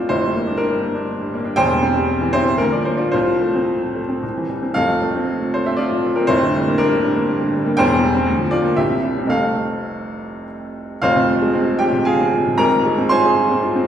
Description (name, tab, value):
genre	classical, romantic character piece for solo piano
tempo	104-124 BPM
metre	3/4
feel	rubato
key	F major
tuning	A4 = 442 Hz
part	clear upright piano	solo	0.0-13.9 s	E1 to C6	-16 LUFS	equal	none
room	wet recital hall reverb, RT60 1.4 s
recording	recorded in a church or concert hall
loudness	-16 LUFS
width	side -9 dB against mid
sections	0.0-11.0 A section; 11.0-13.9 B section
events	none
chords	0.1 Gm7/F; 1.6 C/E; 2.6 Bb/D; 3.1 F/C; 4.2 C; 4.8 F; 6.3 Gm7/F; 7.8 C/E; 8.3 Bb/D; 8.8 C; 9.3 F; 11.0 Fm; 12.6 Fm/Ab